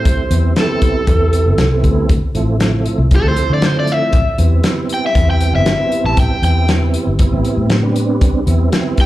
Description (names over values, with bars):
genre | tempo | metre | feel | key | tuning
straight-eighth soul blues | 118 BPM | 4/4 | straight | A minor | A4 = 440 Hz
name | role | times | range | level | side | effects
overdriven semi-hollow guitar | melody | 0.0-9.1 s | A4 to A5 | -18 LUFS | equal | spring reverb, slapback echo, plate reverb
tonewheel organ | accompaniment | 0.0-9.1 s | F3 to E4 | -20 LUFS | right 4 dB | slow rotary speaker, chorus vibrato, plate reverb, slapback echo
vintage muted fingered electric bass | bass | 0.0-8.7 s | G1 to D3 | -15 LUFS | equal | none
warm soul drum kit | drums | 0.1-9.1 s | hi-hat, kick drum, snare drum | -16 LUFS | equal | none
room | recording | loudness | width
light reverb | live gig heard through the venue's PA, club reverb | -12 LUFS | side -15 dB against mid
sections
0.0-9.1 A section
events
none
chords
0.0 Am7; 2.1 Dm7; 4.1 Am7